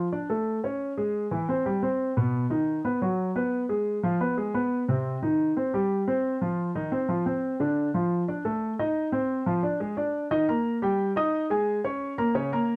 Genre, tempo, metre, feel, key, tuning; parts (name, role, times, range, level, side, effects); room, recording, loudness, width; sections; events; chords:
jazz; 177 BPM; 4/4; straight; A4 = 441 Hz
warm grand piano; solo; 0.0-12.8 s; B2 to Eb6; -27 LUFS; equal
light reverb; dark, warm production; -27 LUFS; mono
0.0-10.3 A section; 10.3-12.8 B section
0.0 Dmaj7(no3); 0.8 Dbm; 1.5 C5; 2.2 B; 3.5 Fdim; 4.9 Cm; 6.2 F5; 7.6 Dm; 9.0 F5; 9.6 N.C.; 10.3 Eb; 11.7 Bbm7